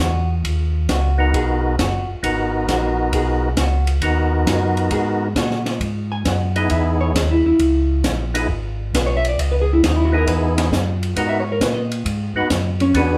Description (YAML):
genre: soul jazz organ trio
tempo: 134 BPM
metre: 4/4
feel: swing 68% on 8ths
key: G# minor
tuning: A4 = 440 Hz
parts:
  - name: vintage hollow-body jazz guitar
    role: accompaniment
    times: 0.0-13.2 s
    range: B3 to G#5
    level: -24 LUFS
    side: equal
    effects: none
  - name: mellow tonewheel organ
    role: bass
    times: 0.0-13.2 s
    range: F#1 to A#2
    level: -22 LUFS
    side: equal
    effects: overdrive, chorus vibrato, slow rotary speaker
  - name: open jazz drum kit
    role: drums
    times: 0.4-13.1 s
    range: hi-hat, kick drum, ride cymbal, snare drum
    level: -27 LUFS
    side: equal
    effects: none
  - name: percussive tonewheel organ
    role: melody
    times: 1.2-13.2 s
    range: B3 to B4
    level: -23 LUFS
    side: equal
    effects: overdrive, chorus vibrato, stopped rotary speaker
room: wet studio reverb, RT60 0.6 s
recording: heard from further back in the room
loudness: -19 LUFS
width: mono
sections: 0.0-13.2 A section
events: hollow-body jazz guitar solo 0.0-13.2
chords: 0.0 G#m7; 5.8 C#m7; 11.2 G#m7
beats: | 0.44 0.89 1.33 1.78 | 2.23 2.68 3.12 3.57 | 4.02 4.47 4.91 5.36 | 5.81 6.25 6.70 7.15 | 7.59 8.04 8.49 8.93 | 9.38 9.82 10.27 10.72 | 11.16 11.61 12.05 12.50 | 12.94